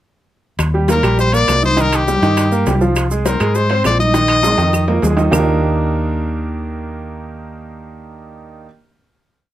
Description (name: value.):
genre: latin, salsa.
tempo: 202 BPM.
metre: 4/4.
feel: straight.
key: Eb major.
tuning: A4 = 440 Hz.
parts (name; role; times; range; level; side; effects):
hollow-body short-scale fingered electric bass; bass; 0.6-8.7 s; Bb1 to Ab2; -18 LUFS; equal; none.
bongos; percussion; 0.6-5.4 s; none; -26 LUFS; left 6 dB; none.
claves; percussion; 0.6-5.4 s; none; -24 LUFS; right 2 dB; none.
congas; percussion; 0.6-5.4 s; none; -25 LUFS; left 2 dB; none.
maracas; percussion; 0.6-5.4 s; none; -31 LUFS; right 4 dB; none.
timbales; percussion; 0.6-5.4 s; none; -25 LUFS; right 3 dB; none.
clear baby grand piano; accompaniment; 0.7-8.7 s; Eb3 to Eb5; -19 LUFS; right 3 dB; none.
brilliant trumpet; melody; 0.9-5.0 s; G4 to Eb5; -17 LUFS; left 3 dB; none.
room: light reverb.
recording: close, detailed microphones.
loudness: -13 LUFS.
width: side -13 dB against mid.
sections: 0.6-5.3 verse; 5.3-7.7 final chord.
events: drum fill 4.4-5.3.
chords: 0.6 Ebmaj7; 1.8 Cm7; 3.0 Fm7/C; 4.1 Bb7sus4; 5.3 Ebmaj7.